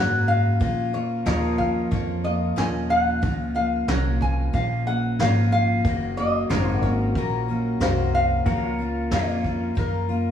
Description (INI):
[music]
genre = honky-tonk and classic country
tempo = 92 BPM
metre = 4/4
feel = straight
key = Bb minor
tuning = A4 = 441 Hz
[part]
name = lap resonator guitar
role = melody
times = 0.0-10.3 s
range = Bb4 to Ab5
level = -26 LUFS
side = left 1 dB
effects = none
[part]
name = clear concert grand piano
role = accompaniment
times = 0.0-9.6 s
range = Db4 to Db5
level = -34 LUFS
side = right 3 dB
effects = none
[part]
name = picked steel-string acoustic guitar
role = accompaniment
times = 0.0-10.3 s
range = Gb2 to Gb4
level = -26 LUFS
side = left 2 dB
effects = none
[part]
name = pedal steel guitar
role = sustained chords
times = 0.0-10.3 s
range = F3 to Db5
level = -32 LUFS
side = equal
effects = none
[part]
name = upright bass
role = bass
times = 0.0-10.3 s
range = Gb1 to Bb2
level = -26 LUFS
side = equal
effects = none
[part]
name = vintage brush drum kit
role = drums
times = 0.6-9.9 s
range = hi-hat, kick drum, snare drum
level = -27 LUFS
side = right 1 dB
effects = none
[sound]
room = moderate plate reverb, RT60 2.4 s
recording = heard from further back in the room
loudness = -20 LUFS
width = side -9 dB against mid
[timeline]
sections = 0.0-10.3 A section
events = none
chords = 0.0 Gb; 0.6 Bbm; 5.8 Gb; 8.5 Bbm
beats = | 0.61 1.26 1.92 2.57 | 3.23 3.88 4.54 5.19 | 5.84 6.50 7.15 7.81 | 8.46 9.12 9.77